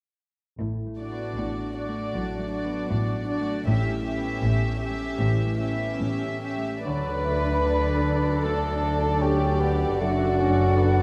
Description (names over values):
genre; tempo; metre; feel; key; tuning
classical, slow romantic movement for symphony orchestra; 78 BPM; 4/4; rubato; D major; A4 = 441 Hz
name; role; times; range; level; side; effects
concert harp; arpeggios; 0.6-11.0 s; F#2 to A4; -35 LUFS; equal; none
dark symphonic double bass section; bass; 0.6-11.0 s; F#1 to D2; -32 LUFS; equal; none
warm studio cello section; bass; 0.6-11.0 s; D2 to A2; -32 LUFS; equal; none
warm symphonic violin section; melody; 1.0-11.0 s; D5 to E5; -37 LUFS; equal; none
warm symphonic violin section; second line; 1.0-11.0 s; F#4 to B4; -36 LUFS; equal; none
dark symphonic viola section; accompaniment; 1.0-11.0 s; C#4 to A4; -34 LUFS; equal; none
dark French horn section; sustained chords; 6.8-11.0 s; F#3 to D4; -35 LUFS; equal; none
mellow hollow silver concert flute; second line; 6.9-11.0 s; F#5 to B5; -33 LUFS; equal; none
warm clarinet; second line; 6.9-11.0 s; F#4 to B4; -31 LUFS; equal; none
warm bassoon; accompaniment; 6.9-11.0 s; F#3 to D4; -34 LUFS; equal; none
room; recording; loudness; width
moderate scoring stage reverb, RT60 1.8 s; dark, warm production; -25 LUFS; mono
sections
0.6-6.9 A section; 6.9-11.0 B section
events
none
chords
0.6 D/A; 3.7 A7; 6.9 D; 10.0 D/F#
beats
| 0.59 1.38 2.14 2.90 | 3.66 4.42 5.19 5.99 | 6.85 7.65 8.43 9.21 | 10.00 10.77